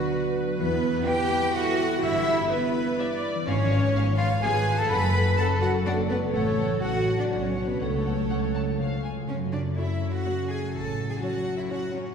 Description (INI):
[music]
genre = cinematic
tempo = 125 BPM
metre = 3/4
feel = straight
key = F# minor from 3.5 s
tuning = A4 = 441 Hz
[part]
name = vibraphone with soft mallets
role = melody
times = 0.0-8.8 s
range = F#4 to B5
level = -31 LUFS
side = right 2 dB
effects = none
[part]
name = clear studio violin section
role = second line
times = 0.0-12.0 s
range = F#4 to B5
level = -36 LUFS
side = left 2 dB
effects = none
[part]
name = warm clarinet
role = second line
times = 0.0-8.8 s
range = F#4 to B5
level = -34 LUFS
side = left 2 dB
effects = none
[part]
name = warm chamber viola section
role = accompaniment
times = 0.0-11.8 s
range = A3 to D5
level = -34 LUFS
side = equal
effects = none
[part]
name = dark French horn section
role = sustained chords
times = 0.0-12.1 s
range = E#3 to E#4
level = -35 LUFS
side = left 1 dB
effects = none
[part]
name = concert harp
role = arpeggios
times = 0.0-12.1 s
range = F#2 to B5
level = -31 LUFS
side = left 1 dB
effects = none
[part]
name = dark chamber cello section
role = bass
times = 0.0-12.1 s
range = F#3 to B4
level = -29 LUFS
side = right 1 dB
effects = none
[part]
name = dark symphonic violin section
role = melody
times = 0.1-11.8 s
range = B4 to A5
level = -40 LUFS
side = left 2 dB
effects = none
[part]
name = warm chamber double bass section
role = bass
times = 0.6-11.1 s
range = F#1 to F#2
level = -29 LUFS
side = equal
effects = none
[sound]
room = wet scoring stage reverb, RT60 2.1 s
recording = heard from further back in the room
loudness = -23 LUFS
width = side -6 dB against mid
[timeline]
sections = 0.0-9.3 A section; 9.3-12.1 B section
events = none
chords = 0.0 Bm/D; 0.6 Em; 2.0 Em/G; 3.5 C#7/G#; 4.9 F#m; 6.3 F#m/A; 7.3 Bm; 7.8 F#m/C#; 8.8 C#; 9.3 F#m; 10.7 F#m/A